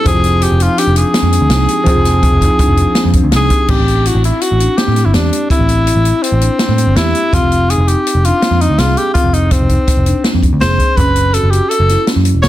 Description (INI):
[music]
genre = progressive instrumental, band music in an uneven meter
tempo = 165 BPM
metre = 5/4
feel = straight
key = unclear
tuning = A4 = 440 Hz
[part]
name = breathy tenor saxophone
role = melody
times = 0.0-12.5 s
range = C4 to C#5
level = -15 LUFS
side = equal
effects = plate reverb
[part]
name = dark baby grand piano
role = accompaniment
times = 0.0-3.7 s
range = F3 to Ab4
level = -19 LUFS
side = right 2 dB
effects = plate reverb
[part]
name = marimba with soft mallets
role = arpeggios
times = 0.0-12.5 s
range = C4 to A4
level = -19 LUFS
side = left 4 dB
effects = plate reverb
[part]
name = picked electric bass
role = bass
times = 0.1-12.5 s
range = E1 to A2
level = -13 LUFS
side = equal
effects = none
[part]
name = open jazz drum kit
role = drums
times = 0.1-12.5 s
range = crash cymbal, hi-hat, kick drum, snare drum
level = -15 LUFS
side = equal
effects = none
[sound]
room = light reverb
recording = dense, heavily limited modern master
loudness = -10 LUFS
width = side -14 dB against mid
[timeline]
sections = 0.0-3.7 A section; 3.7-12.5 B section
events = none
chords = 0.1 Fm; 3.7 Am7; 7.3 Fm; 11.0 F#m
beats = | 0.06 0.42 0.78 1.15 1.51 | 1.87 2.23 2.60 2.96 3.32 | 3.69 4.05 4.41 4.78 5.14 | 5.51 5.87 6.24 6.60 6.97 | 7.33 7.70 8.06 8.43 8.79 | 9.16 9.52 9.89 10.25 10.62 | 10.98 11.34 11.71 12.07 12.44